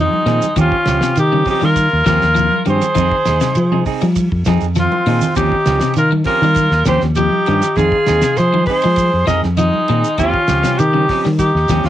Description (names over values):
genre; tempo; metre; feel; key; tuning
afrobeat; 100 BPM; 4/4; straight; Eb mixolydian; A4 = 440 Hz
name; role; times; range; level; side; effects
bright alto saxophone; melody; 0.0-11.9 s; Eb4 to Eb5; -16 LUFS; left 1 dB; cassette tape
breathy trumpet; second line; 0.0-11.9 s; Ab3 to Bb4; -25 LUFS; right 11 dB; cassette tape
clean electric guitar; arpeggios; 0.0-11.9 s; C3 to Ab3; -23 LUFS; left 9 dB; spring reverb, cassette tape
fingered electric bass; bass; 0.0-11.9 s; Db2 to F3; -16 LUFS; equal; none
congas; percussion; 0.1-11.9 s; none; -25 LUFS; right 9 dB; none
clean electric guitar; stabs; 0.3-11.9 s; F3 to Ab4; -23 LUFS; right 11 dB; cassette tape
damped 70s drum kit; drums; 0.3-11.9 s; hi-hat, kick drum, ride cymbal, snare drum; -26 LUFS; equal; cassette tape
shekere; percussion; 0.3-11.9 s; none; -26 LUFS; right 6 dB; none
room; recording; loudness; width
little or no reverb; home recording on cassette; -12 LUFS; side -12 dB against mid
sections
0.0-11.9 A section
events
drum fill 4.9-5.4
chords
0.0 Fm7; 0.6 Eb13; 3.0 Fm7; 5.4 Eb13; 7.8 Fm7; 10.2 Eb13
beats
| 0.56 1.16 1.76 2.36 | 2.96 3.56 4.16 4.76 | 5.37 5.97 6.57 7.18 | 7.78 8.38 8.98 9.59 | 10.19 10.79 11.39